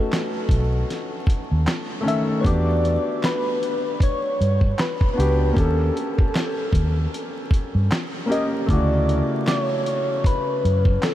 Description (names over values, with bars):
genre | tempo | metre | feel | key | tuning
lo-fi hip hop | 77 BPM | 4/4 | swing 58% on 16ths | E dorian | A4 = 440 Hz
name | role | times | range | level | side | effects
soft struck synth lead | melody | 0.0-11.1 s | A4 to E5 | -26 LUFS | left 1 dB | chorus, ping-pong delay
felt-muted upright piano | accompaniment | 0.0-11.1 s | C#3 to A#4 | -26 LUFS | left 1 dB | none
dusty soul sampler-style drum kit | drums | 0.1-11.1 s | handclaps, hi-hat, kick drum, snare drum | -24 LUFS | equal | none
vintage muted fingered electric bass | bass | 0.5-11.0 s | B1 to G2 | -20 LUFS | equal | none
room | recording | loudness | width
moderate huge ambient reverb, RT60 7.9 s | dreamy mix soaked in reverb, vinyl crackle | -19 LUFS | side -13 dB against mid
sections
0.0-11.1 A section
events
none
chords
0.0 B7; 2.5 Em9; 5.6 D#7#11; 8.7 Dmaj9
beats
0.11 0.89 1.67 | 2.45 3.23 4.01 4.79 | 5.57 6.35 7.13 7.91 | 8.69 9.46 10.24 11.02